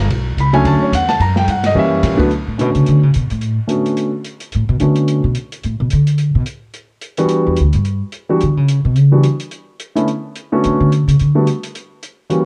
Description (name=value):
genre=jazz piano trio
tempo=216 BPM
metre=4/4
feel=swing 58% on 8ths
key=B minor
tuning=A4 = 440 Hz
part: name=warm concert grand piano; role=melody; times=0.0-12.4 s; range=D3 to B5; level=-18 LUFS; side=equal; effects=none
part: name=upright bass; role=bass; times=0.0-11.5 s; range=B1 to E3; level=-16 LUFS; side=equal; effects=none
part: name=open jazz drum kit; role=drums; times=0.1-12.4 s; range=hi-hat, kick drum, ride cymbal, snare drum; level=-27 LUFS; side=equal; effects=vintage 12-bit sampler grit
room=light reverb, small room ambience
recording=cassette tape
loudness=-15 LUFS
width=mono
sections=0.0-2.3 A section; 2.3-12.5 A section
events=grand piano solo 0.0-2.3; upright bass solo 2.3-12.5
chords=0.1 Bm9; 1.2 F#7b9; 2.3 Bm9; 6.7 Em7; 10.1 Bm9; 11.2 N.C.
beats=| 0.09 0.37 0.65 0.92 | 1.20 1.48 1.75 2.03 | 2.31 2.58 2.86 3.14 | 3.42 3.69 3.97 4.25 | 4.53 4.80 5.08 5.36 | 5.63 5.91 6.19 6.47 | 6.74 7.02 7.30 7.58 | 7.85 8.13 8.41 8.69 | 8.96 9.24 9.52 9.79 | 10.07 10.35 10.63 10.90 | 11.18 11.46 11.74 12.01 | 12.29